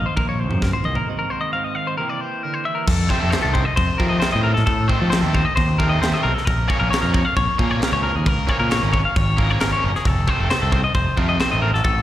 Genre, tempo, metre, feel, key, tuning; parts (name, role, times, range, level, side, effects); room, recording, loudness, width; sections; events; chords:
math rock and midwest emo; 134 BPM; 4/4; straight; A4 = 439 Hz
twelve-string electric guitar; accompaniment; 0.0-2.9 s; Ab2 to Ab4; -29 LUFS; right 7 dB; slapback echo
clean electric guitar; arpeggios; 0.0-12.0 s; Ab4 to F5; -22 LUFS; left 3 dB; slapback echo
growling fingered electric bass; bass; 0.0-12.0 s; F1 to F3; -21 LUFS; equal; overdrive
crisp fusion drum kit; drums; 0.2-12.0 s; crash cymbal, kick drum, snare drum, toms; -23 LUFS; equal
biting overdriven guitar; riff; 3.1-11.7 s; Bb2 to Db4; -25 LUFS; right 2 dB; slapback echo
light reverb, studio ambience; live gig heard through the venue's PA, recital hall reverb; -17 LUFS; side -13 dB against mid
0.0-2.9 A section; 2.9-12.0 B section
break 1.1-2.9
0.0 Cm7b5; 1.1 Ab7; 2.0 C7; 2.9 F7; 6.5 Bbm7; 10.1 F7